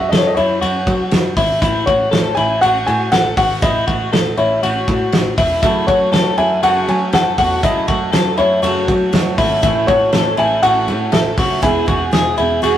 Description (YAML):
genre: jangly indie pop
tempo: 120 BPM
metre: 4/4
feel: straight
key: F# dorian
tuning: A4 = 441 Hz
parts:
  - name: clear upright piano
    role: melody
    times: 0.0-12.8 s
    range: C#5 to G#5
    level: -18 LUFS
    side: left 1 dB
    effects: tape echo
  - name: twelve-string electric guitar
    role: arpeggios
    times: 0.0-12.8 s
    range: E4 to A4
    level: -18 LUFS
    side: left 2 dB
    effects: none
  - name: picked electric bass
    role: bass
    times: 0.0-12.8 s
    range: E1 to F#3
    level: -23 LUFS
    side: right 1 dB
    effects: none
  - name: loose indie drum kit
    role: drums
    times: 0.1-12.7 s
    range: hi-hat, kick drum, ride cymbal, snare drum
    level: -18 LUFS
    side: equal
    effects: none
  - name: picked steel-string acoustic guitar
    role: accompaniment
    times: 5.6-12.8 s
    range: F#2 to A4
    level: -22 LUFS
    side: right 6 dB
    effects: none
room: moderate studio reverb, RT60 0.6 s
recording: rough rehearsal-room recording, warm saturation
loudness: -13 LUFS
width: side -11 dB against mid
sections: 0.0-12.8 A section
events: none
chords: 0.0 F#m; 1.6 A; 5.6 F#m; 9.6 A; 11.6 E